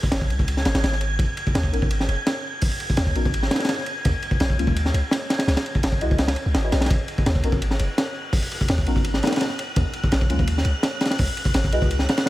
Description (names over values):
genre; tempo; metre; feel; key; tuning
drum and bass, jungle; 168 BPM; 4/4; straight; G# minor; A4 = 436 Hz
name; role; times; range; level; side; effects
crunchy breakbeat drum kit; drums; 0.0-12.3 s; hi-hat, kick drum, ride cymbal, snare drum; -22 LUFS; equal; none
wind-like tuned noise texture; texture; 0.0-12.3 s; F#6 to G#6; -32 LUFS; equal; built-in reverb
long sustained 808-style bass; bass; 0.1-12.1 s; F#1 to D#2; -23 LUFS; equal; none
deep mellow chord stab; stabs; 1.7-11.9 s; F#3 to D#5; -30 LUFS; left 1 dB; chorus, cassette tape, dub echo
room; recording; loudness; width
little or no reverb; none; -20 LUFS; side -16 dB against mid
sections
0.0-12.3 A section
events
kick drops out 6.2-6.9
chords
0.0 C#5; 1.2 G#m11; 4.0 D#m11; 5.5 C#m11; 6.9 G#m11; 9.8 D#m11; 11.2 C#m11